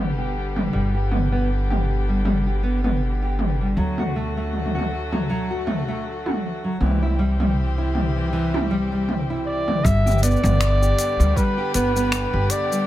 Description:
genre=folktronica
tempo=79 BPM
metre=4/4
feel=swing 56% on 16ths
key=G major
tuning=A4 = 440 Hz
part: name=dark string quartet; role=sustained chords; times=0.0-12.9 s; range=D3 to G4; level=-30 LUFS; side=left 2 dB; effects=low-pass filter
part: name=upright bass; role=bass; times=0.0-12.5 s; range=G1 to D2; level=-22 LUFS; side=equal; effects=none
part: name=nylon-string guitar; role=arpeggios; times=0.2-12.9 s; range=E3 to G4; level=-26 LUFS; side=equal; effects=low-pass filter, tape echo
part: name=organic electronic drum kit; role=drums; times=0.6-12.9 s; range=cabasa, finger snaps, hi-hat, toms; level=-26 LUFS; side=equal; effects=low-pass filter on perc, low-pass filter on toms, low-pass filter on snare, low-pass filter on hats, low-pass filter on room
part: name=warm flugelhorn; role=melody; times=9.5-12.9 s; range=B4 to E5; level=-23 LUFS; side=equal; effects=none
part: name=electronic kick drum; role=drums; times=9.8-11.5 s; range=none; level=-22 LUFS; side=equal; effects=none
room=light reverb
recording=none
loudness=-19 LUFS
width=side -14 dB against mid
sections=0.0-9.8 A section; 9.8-12.9 B section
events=none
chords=0.0 G; 3.8 D; 6.8 C; 9.8 G

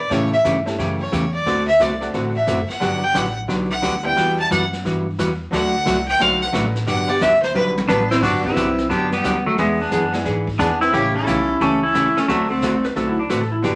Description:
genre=country, western swing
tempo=177 BPM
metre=4/4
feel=swing 65% on 8ths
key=G major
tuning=A4 = 440 Hz
part: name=clear fiddle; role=second line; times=0.0-12.8 s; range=D4 to A5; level=-23 LUFS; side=equal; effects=none
part: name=upright bass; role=bass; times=0.0-13.8 s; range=F#1 to A2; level=-30 LUFS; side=equal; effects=none
part: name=archtop guitar, miked and amplified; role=accompaniment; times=0.1-13.8 s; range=C#3 to A4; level=-25 LUFS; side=equal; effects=none
part: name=tack piano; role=accompaniment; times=0.1-13.8 s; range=F#3 to C5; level=-30 LUFS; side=equal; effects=none
part: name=vintage brush drum kit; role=drums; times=0.1-13.8 s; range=brushed snare drum, crash cymbal, hi-hat, kick drum, snare drum, toms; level=-32 LUFS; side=equal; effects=none
part: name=pedal steel guitar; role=melody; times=7.9-12.8 s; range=F#3 to G4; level=-21 LUFS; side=equal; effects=none
part: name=clean lap steel guitar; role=second line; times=12.8-13.7 s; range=D4 to B4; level=-26 LUFS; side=equal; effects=none
room=wet studio reverb, RT60 0.6 s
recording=none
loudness=-19 LUFS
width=mono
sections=0.0-8.2 A section; 8.2-13.8 B section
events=fiddle solo 0.0-8.2; drum fill 7.5-8.2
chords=0.1 A7; 1.5 D7; 2.8 Gmaj7; 4.2 Emadd9; 5.5 D; 6.9 Gmaj7; 9.6 E7; 10.9 A7; 12.3 D7

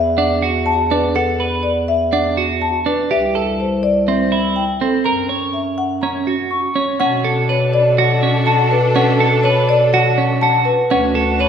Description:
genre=classical, minimalist pattern music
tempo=123 BPM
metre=4/4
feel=straight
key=B minor from 7.0 s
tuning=A4 = 440 Hz
part: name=marimba with medium mallets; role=melody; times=0.0-11.5 s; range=A4 to C#6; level=-18 LUFS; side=left 2 dB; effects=none
part: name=dark bass clarinet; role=bass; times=0.0-11.5 s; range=C2 to B2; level=-20 LUFS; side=left 2 dB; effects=none
part: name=twelve-string electric guitar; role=arpeggios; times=0.2-11.5 s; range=C4 to C#5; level=-18 LUFS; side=right 5 dB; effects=none
part: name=rich studio string section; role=sustained chords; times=7.0-11.5 s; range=D4 to A4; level=-22 LUFS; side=equal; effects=none
room=wet scoring stage reverb, RT60 1.6 s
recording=recorded in a church or concert hall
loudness=-14 LUFS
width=side -8 dB against mid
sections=0.0-7.0 A section; 7.0-11.5 B section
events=none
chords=0.0 E7sus4; 3.1 C6; 5.1 F#; 7.0 Bm7; 10.9 D6

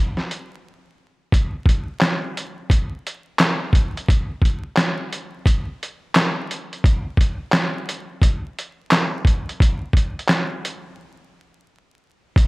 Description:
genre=hip hop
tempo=87 BPM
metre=4/4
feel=swing 64% on 16ths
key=none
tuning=none
part: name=trip hop sampler-style drum kit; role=drums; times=0.2-12.5 s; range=handclaps, hi-hat, kick drum, snare drum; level=-17 LUFS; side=equal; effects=none
room=light reverb, digital ambience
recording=vinyl crackle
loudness=-18 LUFS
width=side -25 dB against mid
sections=0.0-1.3 A section; 1.3-12.4 B section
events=break 0.6-1.3, 11.0-12.4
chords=none

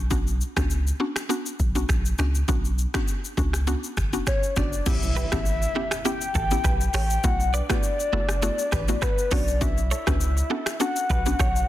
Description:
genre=afrobeats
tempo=101 BPM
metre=4/4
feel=swing 55% on 16ths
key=B minor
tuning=A4 = 438 Hz
part: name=punchy sub bass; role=bass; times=0.0-11.6 s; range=F#1 to C#2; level=-25 LUFS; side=equal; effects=none
part: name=mallet-like synth pluck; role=accompaniment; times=0.1-11.4 s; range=A3 to G4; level=-30 LUFS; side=left 1 dB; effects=chorus
part: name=afro-pop drum kit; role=drums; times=0.1-11.7 s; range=crash cymbal, finger snaps, hi-hat, kick drum, rim click, shaker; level=-26 LUFS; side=equal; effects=soft clipping on snare
part: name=soft octave-layered synth lead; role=melody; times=4.3-11.7 s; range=B4 to G5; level=-28 LUFS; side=left 2 dB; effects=chorus, tape echo
part: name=impact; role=sound effects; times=4.9-7.2 s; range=none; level=-37 LUFS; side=equal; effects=none
part: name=direct-recorded clean electric guitar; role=riff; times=5.2-11.5 s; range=E4 to D5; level=-34 LUFS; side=right 8 dB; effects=spring reverb, tape echo
room=light reverb, digital ambience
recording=dense, heavily limited modern master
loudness=-22 LUFS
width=side -14 dB against mid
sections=0.0-4.9 A section; 4.9-11.7 B section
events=impact 4.9-7.2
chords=0.0 Bmadd9; 4.9 A7; 7.2 D6; 9.3 Bmadd9

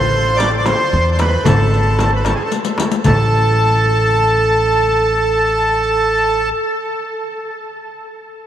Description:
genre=Arabic maqam ensemble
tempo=75 BPM (dotted quarters)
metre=6/8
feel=straight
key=A maqam nahawand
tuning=A4 = 441 Hz
part: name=accordion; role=melody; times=0.0-6.5 s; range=G#4 to D5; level=-15 LUFS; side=right 1 dB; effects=analog delay
part: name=upright bass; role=bass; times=0.0-6.5 s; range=G#1 to E2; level=-18 LUFS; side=equal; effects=none
part: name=darbuka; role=percussion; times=0.4-3.3 s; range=none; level=-23 LUFS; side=left 3 dB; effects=none
part: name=frame drum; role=percussion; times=0.4-3.3 s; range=none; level=-23 LUFS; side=right 1 dB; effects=none
part: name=riq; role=percussion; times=0.4-3.3 s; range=none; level=-26 LUFS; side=left 6 dB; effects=none
room=wet huge ambient reverb, RT60 7.6 s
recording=dreamy mix soaked in reverb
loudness=-13 LUFS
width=side -10 dB against mid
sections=0.0-3.0 A section; 3.0-6.2 B section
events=drum fill 2.5-3.0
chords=none

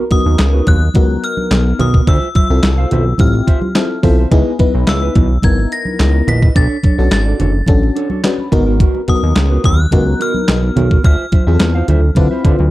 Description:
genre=early-eighties boogie funk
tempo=107 BPM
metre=4/4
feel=straight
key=unclear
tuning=A4 = 440 Hz
part: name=FM electric piano with soft pad layer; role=accompaniment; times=0.0-12.6 s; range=B3 to B4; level=-19 LUFS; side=left 3 dB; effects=chorus
part: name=mellow electric guitar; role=riff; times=0.0-12.6 s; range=B3 to F5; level=-22 LUFS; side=right 5 dB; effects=wide subtle chorus
part: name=metallic FM bell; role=melody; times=0.1-12.7 s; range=D#6 to B6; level=-23 LUFS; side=left 2 dB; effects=chorus, slapback echo
part: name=crisp 8-bit digital drum machine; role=drums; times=0.1-12.6 s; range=handclaps, hi-hat, kick drum, snare drum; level=-13 LUFS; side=equal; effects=none
part: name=congas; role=percussion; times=0.1-12.7 s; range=none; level=-22 LUFS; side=right 1 dB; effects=none
part: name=chorused synth bass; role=bass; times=0.3-12.7 s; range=F#1 to D3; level=-13 LUFS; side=equal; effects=none
room=digital ambience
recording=dark, warm production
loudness=-11 LUFS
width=side -16 dB against mid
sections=0.0-12.7 A section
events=none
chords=0.0 G#m9 (rootless); 2.1 Dm9 (rootless); 4.3 C#m9; 6.6 Bm9; 8.5 G#m9; 11.0 Dm9

